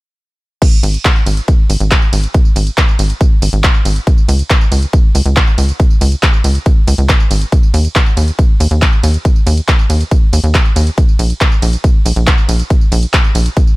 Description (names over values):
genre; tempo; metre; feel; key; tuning
uplifting trance; 139 BPM; 4/4; straight; unclear; A4 = 440 Hz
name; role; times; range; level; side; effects
big-room dance drum kit; drums; 0.6-13.8 s; crash cymbal, handclaps, hi-hat, ride cymbal, tambourine; -18 LUFS; equal; sidechain pumping on hats, sidechain pumping on perc, sidechain pumping on cymbals
electronic kick drum; drums; 0.6-13.7 s; none; -10 LUFS; equal; none
tight sequencer bass; bass; 0.8-13.5 s; Ab1 to Eb2; -12 LUFS; equal; sidechain pumping
room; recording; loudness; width
little or no reverb; none; -9 LUFS; side -21 dB against mid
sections
0.6-13.8 A section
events
stop 0.0-0.6; drop 0.6-13.8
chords
none